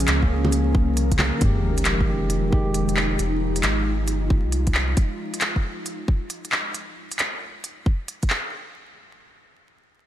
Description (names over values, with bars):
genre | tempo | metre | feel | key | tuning
future garage | 135 BPM | 4/4 | swing 66% on 16ths | F minor | A4 = 440 Hz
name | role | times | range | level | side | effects
bright tine electric piano | accompaniment | 0.0-3.2 s | Db3 to Bb4 | -27 LUFS | right 1 dB | vintage 12-bit sampler grit, sidechain pumping, low-pass filter, ping-pong delay
ethereal airy pad | sustained chords | 0.0-4.9 s | F3 to Eb4 | -28 LUFS | left 1 dB | ensemble chorus, built-in reverb, sidechain pumping
soft dub sub bass | bass | 0.0-5.0 s | F1 to Db2 | -24 LUFS | equal | sidechain pumping
organic electronic drum kit | drums | 0.0-8.4 s | bongos, handclaps, hi-hat | -26 LUFS | equal | none
electronic kick drum | drums | 0.2-8.3 s | none | -21 LUFS | equal | none
sub drop | sound effects | 1.4-3.2 s | none | -29 LUFS | equal | none
room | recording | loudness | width
light reverb | vinyl crackle | -20 LUFS | side -12 dB against mid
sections
0.0-1.4 A section; 1.4-8.5 B section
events
impact 1.4-3.2; filter sweep on tine electric piano 1.4-3.2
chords
0.0 Bbm7; 1.4 Fm9